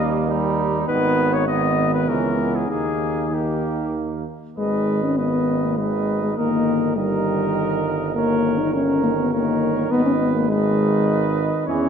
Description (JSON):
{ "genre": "classical, brass quintet", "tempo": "101 BPM", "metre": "3/4", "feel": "rubato", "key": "G# minor", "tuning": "A4 = 440 Hz", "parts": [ { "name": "warm cornet", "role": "melody", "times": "0.0-11.9 s", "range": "G4 to D#5", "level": "-28 LUFS", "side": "left 6 dB", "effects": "none" }, { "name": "mellow trumpet", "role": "second line", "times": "0.0-11.9 s", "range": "A#3 to B4", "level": "-27 LUFS", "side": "right 9 dB", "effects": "none" }, { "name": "bright trombone", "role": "accompaniment", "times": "0.0-11.9 s", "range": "D#3 to G3", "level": "-26 LUFS", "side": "right 3 dB", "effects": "none" }, { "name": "dark French horn", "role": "accompaniment", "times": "0.0-11.9 s", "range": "G3 to D#4", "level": "-22 LUFS", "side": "left 3 dB", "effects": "none" }, { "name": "warm tuba", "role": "bass", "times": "0.0-11.9 s", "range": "G1 to E2", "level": "-25 LUFS", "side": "right 3 dB", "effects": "none" } ], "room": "wet scoring stage reverb, RT60 1.7 s", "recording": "dark, warm production", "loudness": "-18 LUFS", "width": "side -7 dB against mid", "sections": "0.0-4.6 A section; 4.6-11.9 B section", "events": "none", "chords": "0.0 D#; 0.9 G#m; 2.1 C#m; 2.7 D#; 4.6 G#m; 6.4 D#/G; 8.2 D#7/G; 9.9 G#m", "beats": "0.29 | 0.89 1.48 2.08 | 2.70 3.33 3.96 | 4.57 5.18 5.78 | 6.38 6.97 7.56 | 8.16 8.75 9.34 | 9.92 10.50 11.09 | 11.67" }